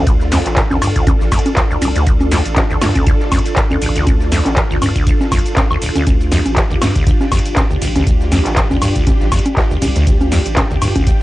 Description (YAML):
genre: acid house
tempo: 120 BPM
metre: 4/4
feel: swing 56% on 16ths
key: D minor pentatonic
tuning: A4 = 440 Hz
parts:
  - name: string machine, full ensemble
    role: sustained chords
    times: 0.0-11.2 s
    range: D4 to A4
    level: -22 LUFS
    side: equal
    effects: ensemble chorus, sidechain pumping, cassette tape
  - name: acid bass, saw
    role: riff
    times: 0.0-11.1 s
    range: D1 to F2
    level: -19 LUFS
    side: equal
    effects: overdrive, lush chorus, sidechain pumping, cassette tape, analog delay
  - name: saturated sub bass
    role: bass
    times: 0.0-10.9 s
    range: A1 to G2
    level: -18 LUFS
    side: equal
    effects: sidechain pumping
  - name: dusty soul sampler-style drum kit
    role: drums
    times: 0.1-11.2 s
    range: hi-hat, snare drum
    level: -33 LUFS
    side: equal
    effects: none
  - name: electro analog drum machine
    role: drums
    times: 0.1-11.2 s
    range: congas, handclaps, hi-hat, ride cymbal, shaker, snare drum, woodblock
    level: -18 LUFS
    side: equal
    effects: none
  - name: electronic kick drum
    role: drums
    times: 0.1-11.2 s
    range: none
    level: -15 LUFS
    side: equal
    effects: none
room: light reverb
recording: home recording on cassette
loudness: -12 LUFS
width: side -16 dB against mid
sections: 0.0-11.2 A section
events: none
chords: 0.0 Dm